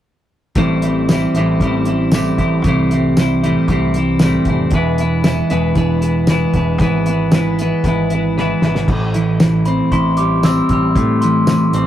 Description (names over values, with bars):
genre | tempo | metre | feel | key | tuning
indie rock | 116 BPM | 4/4 | straight | A minor | A4 = 439 Hz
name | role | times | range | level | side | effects
twelve-string electric guitar | riff | 0.6-11.9 s | A2 to E4 | -15 LUFS | equal | none
growling picked electric bass | bass | 0.6-11.9 s | E1 to A2 | -21 LUFS | equal | overdrive
cloth-damped thuddy drum kit | drums | 0.6-11.9 s | crash cymbal, hi-hat, kick drum, snare drum, tambourine | -17 LUFS | equal | none
glockenspiel with rubber mallets | melody | 9.7-11.9 s | B5 to E6 | -19 LUFS | equal | none
room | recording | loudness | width
light reverb | rough rehearsal-room recording, warm saturation | -13 LUFS | side -11 dB against mid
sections
0.6-8.9 A section; 8.9-11.9 B section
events
drum fill 8.4-8.9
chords
0.6 Am7; 4.7 E; 8.9 Am7